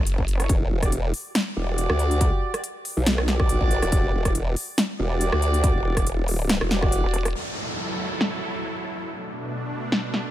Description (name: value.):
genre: heavy wobble dubstep.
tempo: 140 BPM.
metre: 4/4.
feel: swing 55% on 16ths, half-time.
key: unclear.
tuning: A4 = 440 Hz.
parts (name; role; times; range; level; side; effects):
vowel-sweep wobble bass; bass; 0.0-0.5, 7.0-7.3 s; E1 to F#1; -24 LUFS; equal; chorus, overdrive.
big-room dance drum kit; drums; 0.1-10.2 s; hi-hat, rim click, snare drum; -26 LUFS; equal; overdrive, low-pass filter on hats, small room reverb, low-pass filter on snare.
electronic kick drum; drums; 0.2-6.9 s; none; -23 LUFS; equal; small room reverb.
warm brass ensemble; stabs; 0.4-7.3 s; E4 to D5; -30 LUFS; right 2 dB; tape echo.
formant-sweep wobble bass; bass; 0.5-7.0 s; E1 to D2; -23 LUFS; equal; chorus, overdrive.
supersaw pad; sustained chords; 7.3-10.3 s; B2 to A4; -30 LUFS; right 1 dB; sidechain pumping.
downlifter; sound effects; 7.4-10.3 s; none; -32 LUFS; equal; none.
room: little or no reverb.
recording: none.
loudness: -21 LUFS.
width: side -13 dB against mid.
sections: 0.0-7.4 A section; 7.4-10.3 B section.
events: drop 0.0-7.4; kick drops out 6.9-7.4.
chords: 0.5 Em7; 7.4 F#m7; 9.1 Bm7.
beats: 0.07 | 0.49 0.92 1.35 1.78 | 2.21 2.64 3.06 3.49 | 3.92 4.35 4.78 5.21 | 5.64 6.07 6.49 6.92 | 7.35 7.78 8.21 8.64 | 9.06 9.49 9.92.